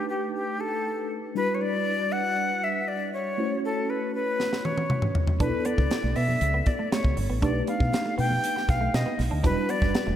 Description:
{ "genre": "polished 1980s jazz-funk pop", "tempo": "119 BPM", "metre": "4/4", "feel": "straight", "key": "B minor", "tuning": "A4 = 440 Hz", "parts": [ { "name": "breathy bright jazz flute", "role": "melody", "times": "0.0-10.2 s", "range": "G4 to G5", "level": "-28 LUFS", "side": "left 2 dB", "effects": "slapback echo" }, { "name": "mellow tine electric piano", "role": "accompaniment", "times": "0.0-10.2 s", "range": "F#3 to D5", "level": "-30 LUFS", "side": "equal", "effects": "medium stereo tremolo, wide subtle chorus, slapback echo" }, { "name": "tight funk drum kit", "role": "drums", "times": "4.4-10.1 s", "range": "hi-hat, kick drum, snare drum, toms", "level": "-27 LUFS", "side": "equal", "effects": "none" }, { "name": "semi-hollow electric guitar", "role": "riff", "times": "5.4-10.2 s", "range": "A3 to D4", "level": "-34 LUFS", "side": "right 4 dB", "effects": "analog chorus, slapback echo" }, { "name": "deep dub fingered electric bass", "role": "bass", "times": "5.4-10.2 s", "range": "E1 to B2", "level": "-27 LUFS", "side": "equal", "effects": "none" }, { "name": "congas", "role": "percussion", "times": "5.4-10.2 s", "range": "none", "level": "-41 LUFS", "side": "right 4 dB", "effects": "none" } ], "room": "moderate concert hall reverb, RT60 2.2 s", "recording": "big arena sound", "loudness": "-24 LUFS", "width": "side -10 dB against mid", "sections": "0.0-10.2 A section", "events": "drum fill 4.4-5.4", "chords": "0.0 B7alt; 1.4 Em9; 3.4 F#m7; 5.4 Bm11; 7.4 B7alt; 9.4 Em9", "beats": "0.35 0.86 | 1.36 1.87 2.37 2.88 | 3.38 3.89 4.39 4.90 | 5.41 5.91 6.42 6.92 | 7.42 7.93 8.43 8.94 | 9.44 9.95" }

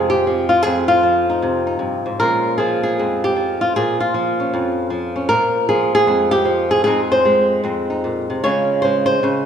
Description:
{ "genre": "solo jazz", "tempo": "154 BPM", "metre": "4/4", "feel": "swing 64% on 8ths, rubato", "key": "unclear", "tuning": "A4 = 439 Hz", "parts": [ { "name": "flamenco guitar", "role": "solo", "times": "0.0-9.5 s", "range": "F2 to Db5", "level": "-15 LUFS", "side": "equal", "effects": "none" } ], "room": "moderate scoring stage reverb, RT60 1.8 s", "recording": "recorded in a church or concert hall", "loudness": "-15 LUFS", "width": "side -8 dB against mid", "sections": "0.0-9.5 A section", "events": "none", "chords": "0.0 Fm7; 2.2 Bbm7; 6.8 Fm7; 8.4 Dbmaj7", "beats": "0.26 | 0.64 1.03 1.42 1.81 | 2.21 2.60 2.99 3.37 | 3.76 4.14 4.52 4.91 | 5.29 5.68 6.06 6.45 | 6.84 7.24 7.63 8.03 | 8.43 8.82 9.21" }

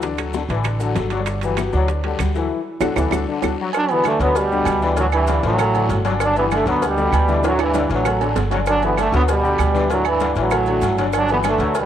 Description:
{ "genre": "latin, salsa", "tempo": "195 BPM", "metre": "4/4", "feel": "straight", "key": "G major", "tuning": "A4 = 441 Hz", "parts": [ { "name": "warm trombone section", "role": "second line", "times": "0.0-11.8 s", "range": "D3 to F#3", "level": "-25 LUFS", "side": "left 6 dB", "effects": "cassette tape" }, { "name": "clear concert grand piano", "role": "accompaniment", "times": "0.0-11.9 s", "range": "D3 to D5", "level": "-26 LUFS", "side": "left 7 dB", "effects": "cassette tape" }, { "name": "upright bass", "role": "bass", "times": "0.0-11.9 s", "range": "G1 to D2", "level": "-22 LUFS", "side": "right 1 dB", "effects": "none" }, { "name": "bongos and cowbell", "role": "percussion", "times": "0.0-11.9 s", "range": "none", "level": "-29 LUFS", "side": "left 7 dB", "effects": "none" }, { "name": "congas", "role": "percussion", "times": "0.0-11.9 s", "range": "none", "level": "-33 LUFS", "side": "left 10 dB", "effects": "none" }, { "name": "guiro", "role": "percussion", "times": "0.0-11.9 s", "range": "none", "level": "-39 LUFS", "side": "left 8 dB", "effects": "none" }, { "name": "maracas", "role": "percussion", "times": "0.0-11.9 s", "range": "none", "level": "-42 LUFS", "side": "right 12 dB", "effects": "none" }, { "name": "timbales and agogo bells", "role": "percussion", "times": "0.0-11.9 s", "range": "none", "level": "-26 LUFS", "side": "right 12 dB", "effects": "none" }, { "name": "claves", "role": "percussion", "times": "0.2-11.6 s", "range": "none", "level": "-31 LUFS", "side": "right 10 dB", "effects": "none" }, { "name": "bright trombone section", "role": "melody", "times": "3.8-11.9 s", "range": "G2 to D4", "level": "-19 LUFS", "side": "right 2 dB", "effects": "cassette tape" } ], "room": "light reverb, small room ambience", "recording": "home recording on cassette", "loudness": "-16 LUFS", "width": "side -10 dB against mid", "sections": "0.0-3.7 A section; 3.7-11.9 B section", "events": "band accent 2.5-3.7; drum fill 3.3-3.7, 7.4-8.7", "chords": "0.0 G5; 2.5 D; 3.7 Gmaj7; 5.0 D; 6.2 Gmaj7; 7.4 D; 8.7 Gmaj7; 9.9 D; 11.1 Gmaj7", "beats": "| 0.03 0.34 0.65 0.96 | 1.27 1.57 1.88 2.19 | 2.50 2.81 3.12 3.43 | 3.74 4.04 4.35 4.66 | 4.97 5.28 5.59 5.89 | 6.20 6.51 6.82 7.13 | 7.44 7.75 8.05 8.36 | 8.67 8.98 9.29 9.59 | 9.90 10.21 10.52 10.82 | 11.13 11.44 11.75" }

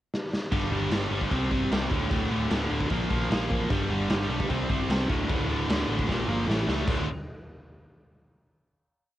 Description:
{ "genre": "punk rock", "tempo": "151 BPM", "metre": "4/4", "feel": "straight", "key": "D minor", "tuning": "A4 = 440 Hz", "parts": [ { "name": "raw garage drum kit", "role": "drums", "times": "0.1-7.0 s", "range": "crash cymbal, kick drum, snare drum", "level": "-29 LUFS", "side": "equal", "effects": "cassette tape" }, { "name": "crunchy overdriven guitar", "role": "riff", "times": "0.5-7.0 s", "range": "D2 to C4", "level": "-29 LUFS", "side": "equal", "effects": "cassette tape" }, { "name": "heavy high-gain guitar", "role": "riff", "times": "0.5-7.0 s", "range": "D2 to F4", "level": "-32 LUFS", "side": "left 1 dB", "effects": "distortion, cassette tape" }, { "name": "overdriven picked electric bass", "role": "bass", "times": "0.5-7.1 s", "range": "D1 to C#2", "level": "-32 LUFS", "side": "equal", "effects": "none" } ], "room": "moderate booth ambience, RT60 0.2 s", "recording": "home recording on cassette", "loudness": "-24 LUFS", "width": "side -14 dB against mid", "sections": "0.0-0.5 pickup bar; 0.5-6.9 riff; 6.9-8.5 final chord", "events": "drum fill 0.1-0.5, 6.1-6.9", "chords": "0.0 N.C.; 0.5 G5; 1.3 C5; 1.9 D5; 2.9 Bb5; 3.7 G5; 4.5 C5; 5.1 D5; 6.1 Bb5; 6.5 A; 6.9 D5", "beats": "0.12 | 0.52 0.92 1.31 1.71 | 2.11 2.50 2.90 3.30 | 3.70 4.10 4.50 4.89 | 5.29 5.69 6.08 6.48 | 6.88" }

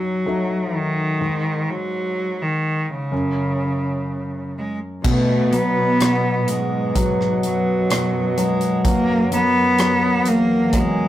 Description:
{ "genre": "pop ballad", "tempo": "63 BPM", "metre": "4/4", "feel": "straight", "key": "unclear", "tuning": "A4 = 440 Hz", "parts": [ { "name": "clear cello", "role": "melody", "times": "0.0-11.1 s", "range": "C#3 to B3", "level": "-21 LUFS", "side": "equal", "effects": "none" }, { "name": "warm concert grand piano", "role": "accompaniment", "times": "0.0-11.1 s", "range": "F#2 to D#4", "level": "-23 LUFS", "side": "left 2 dB", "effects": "none" }, { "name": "glass harmonica", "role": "sustained chords", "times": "5.0-11.1 s", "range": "B3 to G#5", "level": "-25 LUFS", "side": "right 3 dB", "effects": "none" }, { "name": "dark chamber cello section", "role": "bass", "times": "5.0-11.1 s", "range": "E2 to B2", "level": "-25 LUFS", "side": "equal", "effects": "none" }, { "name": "modern studio drum kit", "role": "drums", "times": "5.0-10.9 s", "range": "crash cymbal, hi-hat, kick drum, rim click", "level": "-24 LUFS", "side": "equal", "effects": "none" } ], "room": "moderate studio reverb, RT60 0.7 s", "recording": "rough rehearsal-room recording, warm saturation", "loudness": "-17 LUFS", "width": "side -13 dB against mid", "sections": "0.0-5.0 A section; 5.0-11.1 B section", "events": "none", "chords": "0.0 D#dim/F#; 1.2 N.C.; 5.0 B; 8.8 F#", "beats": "0.27 | 1.21 2.16 3.12 4.08 | 5.04 6.00 6.95 7.90 | 8.85 9.79 10.73" }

